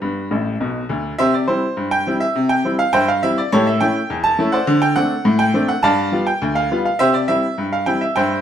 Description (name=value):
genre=ragtime piano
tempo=103 BPM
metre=2/4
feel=straight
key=C major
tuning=A4 = 440 Hz
part: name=bright upright piano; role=solo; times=0.0-8.4 s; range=A1 to A5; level=-16 LUFS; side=equal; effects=none
room=moderate stone room reverb, RT60 0.9 s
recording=band playing live in one room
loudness=-15 LUFS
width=side -9 dB against mid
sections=0.0-1.2 A section; 1.2-8.4 B section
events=upright piano fill 0.3-1.2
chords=0.0 G; 1.2 C; 3.5 A7; 4.7 D5; 5.8 G7; 7.0 C